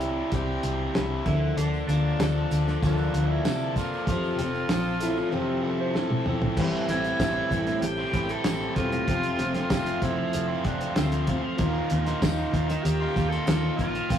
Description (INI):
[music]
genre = folk rock and heartland rock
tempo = 96 BPM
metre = 4/4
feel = straight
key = unclear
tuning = A4 = 441 Hz
[part]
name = warm tenor saxophone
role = melody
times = 0.0-14.2 s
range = C4 to A4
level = -31 LUFS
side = right 1 dB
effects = none
[part]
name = picked steel-string acoustic guitar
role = accompaniment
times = 0.0-14.2 s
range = F2 to D5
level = -30 LUFS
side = left 1 dB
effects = none
[part]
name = biting overdriven guitar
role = riff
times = 0.0-14.2 s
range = A2 to A4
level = -32 LUFS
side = right 1 dB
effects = spring reverb
[part]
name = fingered electric bass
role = bass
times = 0.0-14.2 s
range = E1 to C3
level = -28 LUFS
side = equal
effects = none
[part]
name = cloth-damped thuddy drum kit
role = drums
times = 0.0-14.2 s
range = crash cymbal, hi-hat, kick drum, snare drum, toms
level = -29 LUFS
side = equal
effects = none
[part]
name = tambourine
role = percussion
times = 1.6-13.6 s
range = none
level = -47 LUFS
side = right 5 dB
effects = none
[part]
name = clean lap steel guitar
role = second line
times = 5.0-6.4 s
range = E4 to C5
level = -31 LUFS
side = right 1 dB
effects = none
[part]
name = bright tonewheel organ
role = sustained chords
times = 6.6-14.2 s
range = F3 to G4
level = -42 LUFS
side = right 1 dB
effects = none
[sound]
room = moderate studio reverb, RT60 0.6 s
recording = rough rehearsal-room recording, tube saturation, studio ambience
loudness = -23 LUFS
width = side -9 dB against mid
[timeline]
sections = 0.0-6.6 A section; 6.6-14.2 B section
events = drum fill 5.9-6.6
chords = 0.0 Cadd9; 1.3 Bbmaj7/D; 4.1 Fmaj7; 6.6 Am7; 9.1 F; 11.6 Ebsus2